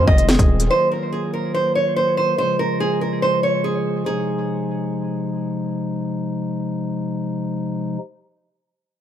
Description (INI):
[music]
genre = hip hop, drill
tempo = 143 BPM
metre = 4/4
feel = half-time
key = F phrygian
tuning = A4 = 439 Hz
[part]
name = nylon-string guitar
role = melody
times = 0.0-5.3 s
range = Ab4 to Eb5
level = -20 LUFS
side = right 1 dB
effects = dub echo
[part]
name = pipe organ, stopped flute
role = sustained chords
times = 0.0-8.0 s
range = C3 to F4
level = -24 LUFS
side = left 1 dB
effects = none
[part]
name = distorted 808-style bass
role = bass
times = 0.0-0.7 s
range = Eb1 to F1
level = -18 LUFS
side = equal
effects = distortion
[part]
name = downlifter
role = sound effects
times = 0.0-0.7 s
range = none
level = barely audible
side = none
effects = none
[part]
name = drill drum kit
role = drums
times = 0.1-0.7 s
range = hi-hat, kick drum, snare drum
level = -15 LUFS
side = equal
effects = none
[sound]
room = moderate spring reverb, RT60 1.3 s, small room ambience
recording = echo-heavy mix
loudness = -19 LUFS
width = side -10 dB against mid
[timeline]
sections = 0.0-4.1 A section; 4.1-7.4 B section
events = none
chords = 0.0 Fm7; 0.7 Ebmadd9; 2.4 Db; 4.1 Fm7